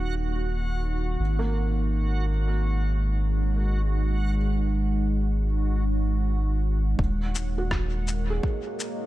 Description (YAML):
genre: ambient dub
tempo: free time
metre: none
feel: none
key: unclear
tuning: A4 = 436 Hz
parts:
  - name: deep dark ambient pad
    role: sustained chords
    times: 0.0-9.1 s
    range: Ab3 to Gb5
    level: -32 LUFS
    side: right 2 dB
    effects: chorus, built-in reverb
  - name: felt-muted upright piano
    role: arpeggios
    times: 0.0-9.1 s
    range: Bb3 to Ab4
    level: -36 LUFS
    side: right 3 dB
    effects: low-pass filter, tape echo
  - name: round analog bass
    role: bass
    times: 0.0-8.4 s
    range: Eb1 to Ab1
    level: -24 LUFS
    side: equal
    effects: none
  - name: backwards swelling texture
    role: texture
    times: 0.0-7.0 s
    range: Gb4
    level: -38 LUFS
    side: right 3 dB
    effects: built-in reverb
  - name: electronic kick drum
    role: drums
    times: 7.0-8.6 s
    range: none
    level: -27 LUFS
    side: equal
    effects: overdrive
  - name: electronic shaker and rim click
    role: drums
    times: 7.3-9.0 s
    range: none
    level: -34 LUFS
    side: left 2 dB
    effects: dub echo
room: little or no reverb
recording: none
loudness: -23 LUFS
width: side -16 dB against mid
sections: 0.0-7.0 A section; 7.0-9.1 B section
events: none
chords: 0.0 Ebm7; 1.2 Ab7sus4; 7.0 Ebm7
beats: free time